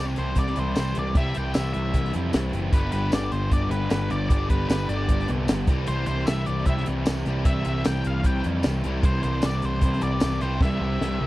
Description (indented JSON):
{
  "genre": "indie rock",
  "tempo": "152 BPM",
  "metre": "4/4",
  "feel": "straight",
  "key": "unclear",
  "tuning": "A4 = 441 Hz",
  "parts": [
    { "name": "octave-fuzz lead guitar", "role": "melody", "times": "0.0-11.3 s", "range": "B4 to G5", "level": "-32 LUFS", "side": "left 1 dB", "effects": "distortion, tape echo" },
    { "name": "distorted electric guitar", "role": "riff", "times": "0.0-11.3 s", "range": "G2 to G4", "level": "-31 LUFS", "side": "left 6 dB", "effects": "distortion" },
    { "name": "thick fuzz guitar", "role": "riff", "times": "0.0-11.3 s", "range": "G2 to G4", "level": "-32 LUFS", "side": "right 6 dB", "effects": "distortion, lush chorus" },
    { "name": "fuzz picked electric bass", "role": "bass", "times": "0.0-11.3 s", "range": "Gb1 to F2", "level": "-26 LUFS", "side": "equal", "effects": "overdrive" },
    { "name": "compact cocktail drum kit", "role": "drums", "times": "0.2-11.1 s", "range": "hi-hat, kick drum, snare drum, tambourine", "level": "-23 LUFS", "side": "equal", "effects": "none" }
  ],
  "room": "little or no reverb",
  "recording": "dry, close 1970s-style studio recording",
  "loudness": "-22 LUFS",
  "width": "side -17 dB against mid",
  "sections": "0.0-11.3 A section",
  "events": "drum fill 10.6-11.3",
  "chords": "0.0 C; 2.7 G; 5.7 C",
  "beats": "0.36 0.76 | 1.15 1.55 1.94 2.34 | 2.73 3.12 3.52 3.91 | 4.31 4.70 5.09 5.49 | 5.88 6.28 6.67 7.07 | 7.46 7.85 8.25 8.64 | 9.04 9.43 9.82 10.22 | 10.61 11.01"
}